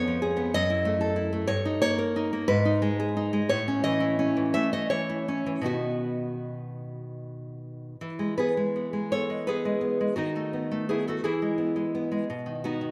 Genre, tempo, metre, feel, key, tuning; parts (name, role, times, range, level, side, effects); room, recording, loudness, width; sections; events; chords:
romantic piece for solo classical guitar; 50-64 BPM (dotted quarters); 6/8; rubato; E major; A4 = 440 Hz
nylon-string guitar; solo; 0.0-12.9 s; E#2 to E5; -28 LUFS; equal; slapback echo
moderate lush hall reverb, RT60 2.7 s; rough home demo mix; -27 LUFS; mono
0.0-8.0 A section; 8.0-12.9 B section
0.0 C#7/E#; 0.5 F#m7; 1.5 D#7/G; 2.5 G#m; 3.5 A; 5.6 B; 8.0 E; 10.2 B7/D#; 11.2 E; 12.3 B